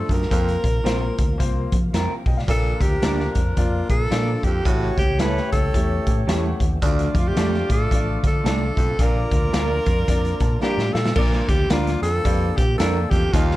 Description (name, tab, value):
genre	uptempo 1960s-style soul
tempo	110 BPM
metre	4/4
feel	swing 60% on 8ths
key	Bb major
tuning	A4 = 440 Hz
part	breathy tenor saxophone	melody	0.0-13.6 s	D4 to Cb5	-26 LUFS	equal	slapback echo
part	warm baby grand piano	accompaniment	0.0-13.6 s	A2 to C6	-30 LUFS	left 4 dB	none
part	tonewheel organ	sustained chords	0.0-13.6 s	C3 to G4	-35 LUFS	equal	none
part	bright baritone saxophone	riff	0.1-13.6 s	D2 to Bb2	-30 LUFS	right 5 dB	none
part	fingered electric bass	bass	0.1-13.6 s	A1 to F3	-24 LUFS	equal	none
part	raw garage drum kit	drums	0.1-13.6 s	crash cymbal, hi-hat, kick drum, snare drum	-22 LUFS	equal	none
part	electric guitar through a small old amp	stabs	0.8-13.0 s	F3 to Bb4	-29 LUFS	right 4 dB	analog chorus
part	mellow horn section	second line	2.5-11.6 s	F3 to D5	-32 LUFS	equal	none
room	light reverb, studio reverb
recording	dark, warm production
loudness	-18 LUFS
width	side -16 dB against mid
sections	0.0-11.2 A section; 11.2-13.6 B section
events	grand piano fill 6.0-6.8, 9.5-11.2; drum fill 10.6-11.2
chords	0.3 Fsus4; 2.5 Bb; 4.6 A7; 6.8 Dm; 9.0 Bb